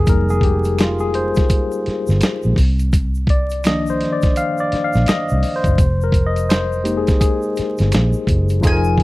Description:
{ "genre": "R&B, neo-soul", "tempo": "84 BPM", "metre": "4/4", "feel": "swing 61% on 16ths", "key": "F dorian", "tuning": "A4 = 440 Hz", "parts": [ { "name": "tine electric piano", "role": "accompaniment", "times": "0.0-9.0 s", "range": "Eb3 to F5", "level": "-19 LUFS", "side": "left 2 dB", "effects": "medium stereo tremolo" }, { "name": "vintage muted fingered electric bass", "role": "bass", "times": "0.0-9.0 s", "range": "F1 to C2", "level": "-18 LUFS", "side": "equal", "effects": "none" }, { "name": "dusty soul sampler-style drum kit", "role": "drums", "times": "0.1-9.0 s", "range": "hi-hat, kick drum, snare drum", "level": "-17 LUFS", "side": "equal", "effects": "none" }, { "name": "egg shaker and finger snaps", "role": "percussion", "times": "0.1-9.0 s", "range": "none", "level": "-36 LUFS", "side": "right 5 dB", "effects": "none" }, { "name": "bowl-back mandolin", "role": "melody", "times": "8.7-9.0 s", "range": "Ab5", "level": "-20 LUFS", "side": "left 4 dB", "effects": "slapback echo" } ], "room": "small room ambience", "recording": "dry, close 1970s-style studio recording, vinyl crackle", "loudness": "-15 LUFS", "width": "side -19 dB against mid", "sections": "0.0-8.6 A section", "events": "tine electric piano solo 0.0-8.6", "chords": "0.0 Fm11; 2.6 Cm11; 5.8 Fm11", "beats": "| 0.07 0.78 1.49 2.21 | 2.92 3.64 4.35 5.07 | 5.78 6.49 7.21 7.92 | 8.64" }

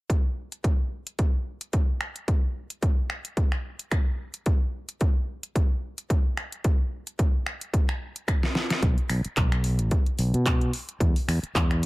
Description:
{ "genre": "nu-disco, nu disco", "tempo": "110 BPM", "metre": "4/4", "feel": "swing 55% on 16ths", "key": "unclear", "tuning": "A4 = 440 Hz", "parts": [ { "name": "electronic kick drum", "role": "drums", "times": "0.1-11.7 s", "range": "none", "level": "-24 LUFS", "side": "equal", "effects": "overdrive" }, { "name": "pop drum kit", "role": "drums", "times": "0.1-11.9 s", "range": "finger snaps, handclaps, hi-hat, snare drum", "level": "-31 LUFS", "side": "equal", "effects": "overdrive" }, { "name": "overdriven fingered electric bass", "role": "bass", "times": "8.8-11.9 s", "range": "A1 to B2", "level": "-24 LUFS", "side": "equal", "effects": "sidechain pumping" } ], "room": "little or no reverb", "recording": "none", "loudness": "-24 LUFS", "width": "side -21 dB against mid", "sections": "0.1-8.8 A section; 8.8-11.9 B section", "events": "drum fill 8.4-8.8", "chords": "none", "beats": "| 0.10 0.65 1.19 1.74 | 2.28 2.83 3.37 3.92 | 4.46 5.01 5.55 6.10 | 6.64 7.19 7.74 8.28 | 8.83 9.37 9.92 10.46 | 11.01 11.55" }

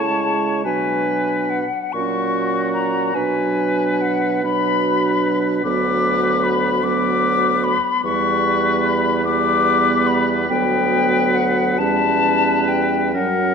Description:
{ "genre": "classical, slow romantic movement for wind quintet", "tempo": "43-51 BPM (dotted quarters)", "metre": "6/8", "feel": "rubato", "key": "B minor from 5.6 s", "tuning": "A4 = 442 Hz", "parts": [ { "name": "hollow concert flute", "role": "melody", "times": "0.0-13.5 s", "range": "F#5 to D6", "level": "-20 LUFS", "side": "left 7 dB", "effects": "none" }, { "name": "warm oboe", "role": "second line", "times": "0.0-13.5 s", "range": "F#4 to C#5", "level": "-24 LUFS", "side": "left 1 dB", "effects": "none" }, { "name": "dark clarinet", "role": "accompaniment", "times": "0.0-13.5 s", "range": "B3 to E4", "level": "-24 LUFS", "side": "right 7 dB", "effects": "none" }, { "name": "warm French horn", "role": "accompaniment", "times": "0.0-13.5 s", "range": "F#3 to G#3", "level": "-25 LUFS", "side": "right 1 dB", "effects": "none" }, { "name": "mellow bassoon", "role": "bass", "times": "0.0-13.5 s", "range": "D2 to C#3", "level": "-23 LUFS", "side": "right 4 dB", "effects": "none" } ], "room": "moderate concert hall reverb, RT60 2.4 s", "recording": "dark, warm production", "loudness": "-16 LUFS", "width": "side -6 dB against mid", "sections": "0.0-13.5 A section", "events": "none", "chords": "0.0 A; 0.6 Bm; 1.9 F#/A#; 3.1 Bm; 5.6 Bm/D; 8.0 Em7; 10.5 Bm/D; 11.8 C#m7b5/E", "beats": "| 0.65 1.94 | 3.15 4.44 | 5.64 6.84 | 8.05 9.26 | 10.50 11.80 | 13.15" }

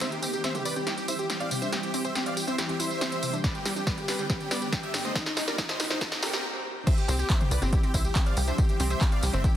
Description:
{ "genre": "uplifting trance", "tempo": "140 BPM", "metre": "4/4", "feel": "straight", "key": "C major", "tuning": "A4 = 439 Hz", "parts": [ { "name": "big supersaw lead", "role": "melody", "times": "0.0-9.5 s", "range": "Eb4 to F5", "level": "-32 LUFS", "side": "equal", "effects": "sidechain pumping, tape echo" }, { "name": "shimmering ambient pad", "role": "sustained chords", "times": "0.0-9.6 s", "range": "D3 to G4", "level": "-36 LUFS", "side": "right 1 dB", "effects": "chorus, built-in reverb, sidechain pumping" }, { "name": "wide unison pluck", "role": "arpeggios", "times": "0.0-9.5 s", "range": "G2 to Eb5", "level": "-36 LUFS", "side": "left 1 dB", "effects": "sidechain pumping" }, { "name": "big-room dance drum kit", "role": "drums", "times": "0.0-9.5 s", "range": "crash cymbal, handclaps, hi-hat, snare drum, tambourine, toms", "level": "-31 LUFS", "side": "equal", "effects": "high-pass filter on snare, high-pass filter on hats, high-pass filter on perc, high-pass filter on toms, high-pass filter on cymbals, high-pass filter on room" }, { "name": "riser and swell", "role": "sound effects", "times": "0.0-6.9 s", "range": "none", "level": "-42 LUFS", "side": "equal", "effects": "none" }, { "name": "electronic kick drum", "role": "drums", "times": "3.4-9.5 s", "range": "none", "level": "-25 LUFS", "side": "equal", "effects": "none" }, { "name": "tight sequencer bass", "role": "bass", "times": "7.1-9.5 s", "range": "G1 to C2", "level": "-27 LUFS", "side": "equal", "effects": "sidechain pumping" } ], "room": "light reverb", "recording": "dense, heavily limited modern master, high-pass filter", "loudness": "-25 LUFS", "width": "side -11 dB against mid", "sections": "0.0-6.9 A section; 6.9-9.6 B section", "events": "build-up 0.0-6.9; drum fill 0.0-6.4; filter sweep on synth arpeggio sound 0.0-6.9; swell 6.0-6.9; stop 6.4-6.9; drop 6.9-9.6", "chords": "0.0 C; 3.4 G; 5.2 Eb6; 6.9 C", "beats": "| 0.01 0.44 0.87 1.30 | 1.73 2.15 2.58 3.01 | 3.44 3.87 4.30 4.73 | 5.15 5.58 6.01 6.44 | 6.87 7.30 7.73 8.15 | 8.58 9.01 9.44" }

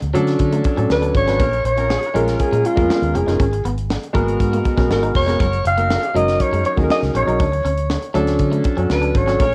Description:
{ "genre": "polished 1980s jazz-funk pop", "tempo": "120 BPM", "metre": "4/4", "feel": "straight", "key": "unclear", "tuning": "A4 = 435 Hz", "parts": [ { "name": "vintage muted fingered electric bass", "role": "bass", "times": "0.0-9.5 s", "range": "E#1 to D3", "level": "-24 LUFS", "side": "equal", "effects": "none" }, { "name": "tight funk drum kit", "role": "drums", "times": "0.0-9.5 s", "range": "hi-hat, kick drum, snare drum", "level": "-24 LUFS", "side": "equal", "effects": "cassette tape" }, { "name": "warm concert grand piano", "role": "accompaniment", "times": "0.1-9.4 s", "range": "F#3 to B4", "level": "-23 LUFS", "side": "equal", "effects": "subtle chorus" }, { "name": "clean electric guitar", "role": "riff", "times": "0.1-9.5 s", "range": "F#3 to D#4", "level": "-31 LUFS", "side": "equal", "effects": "subtle chorus" }, { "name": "growling alto saxophone", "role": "melody", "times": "0.9-9.5 s", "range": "E#4 to E#5", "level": "-22 LUFS", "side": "equal", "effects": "cassette tape" }, { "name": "mellow horn section", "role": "second line", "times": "1.4-2.1, 5.4-6.1, 9.4-9.5 s", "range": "C#4 to C#5", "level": "-32 LUFS", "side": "equal", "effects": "analog delay" } ], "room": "moderate studio reverb, RT60 0.6 s", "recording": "home recording on cassette", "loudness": "-18 LUFS", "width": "mono", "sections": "0.0-9.5 A section", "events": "none", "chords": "0.0 Dmaj7; 1.4 G#m9; 5.4 F#6; 7.4 Dmaj7", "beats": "0.40 0.90 | 1.40 1.90 2.40 2.90 | 3.40 3.90 4.40 4.90 | 5.40 5.90 6.40 6.90 | 7.40 7.90 8.40 8.90 | 9.40" }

